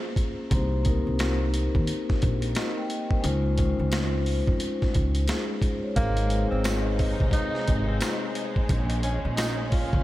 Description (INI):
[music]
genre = hip hop, boom-bap hip-hop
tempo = 88 BPM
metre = 4/4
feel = swing 62% on 16ths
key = unclear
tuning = A4 = 440 Hz
[part]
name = vibraphone with soft mallets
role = accompaniment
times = 0.0-8.7 s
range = Ab3 to G5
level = -30 LUFS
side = left 2 dB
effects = cassette tape, high-pass filter, low-pass filter
[part]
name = boom bap sampler-style drum kit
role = drums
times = 0.2-10.0 s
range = hi-hat, kick drum, rim click, snare drum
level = -27 LUFS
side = equal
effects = none
[part]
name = upright bass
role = bass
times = 0.5-10.0 s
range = Ab1 to F2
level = -26 LUFS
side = equal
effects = none
[part]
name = breathy tenor saxophone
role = melody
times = 6.0-10.0 s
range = Bb3 to F4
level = -32 LUFS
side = right 2 dB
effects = high-pass filter, low-pass filter, diffuse ambient delay
[part]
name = warm studio string section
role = sustained chords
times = 6.0-10.0 s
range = Bb2 to Eb4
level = -34 LUFS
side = equal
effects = high-pass filter, low-pass filter
[part]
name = tambourine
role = percussion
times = 6.6-9.6 s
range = none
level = -45 LUFS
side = right 6 dB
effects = none
[sound]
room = light reverb, small room ambience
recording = none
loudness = -23 LUFS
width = side -16 dB against mid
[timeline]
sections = 0.0-6.0 A section; 6.0-10.0 B section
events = none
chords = 0.0 Bbm7; 0.5 Cm7; 3.2 Dbmaj7; 6.0 Ab; 8.7 Bbm7